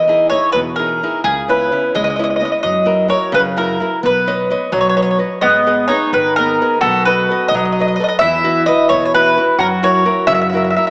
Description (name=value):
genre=italian folk, Italian serenade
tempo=86 BPM (dotted quarters)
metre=6/8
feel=straight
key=B major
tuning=A4 = 440 Hz
part: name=mandolin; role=melody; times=0.0-10.9 s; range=G#4 to E5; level=-14 LUFS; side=equal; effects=none
part: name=flamenco guitar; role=accompaniment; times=0.0-10.9 s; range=B2 to D#5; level=-19 LUFS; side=equal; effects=none
part: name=upright bass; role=bass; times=0.0-10.7 s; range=G#1 to F#2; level=-24 LUFS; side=equal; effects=none
part: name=mandolin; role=second line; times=5.4-10.7 s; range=B3 to F#4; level=-18 LUFS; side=equal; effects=none
room=wet scoring stage reverb, RT60 1.8 s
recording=worn, warbling old tape, cassette tape, warbly pitch drift, small speaker sound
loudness=-12 LUFS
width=side -40 dB against mid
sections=0.0-10.9 A section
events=none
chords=0.0 Emaj7; 1.2 C#m7; 2.6 F#7; 4.0 Badd9; 5.4 G#m; 6.8 B7; 8.2 Esus2; 9.6 F#7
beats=0.54 | 1.24 1.94 | 2.64 3.33 | 4.03 4.73 | 5.43 6.13 | 6.82 7.51 | 8.20 8.89 | 9.58 10.28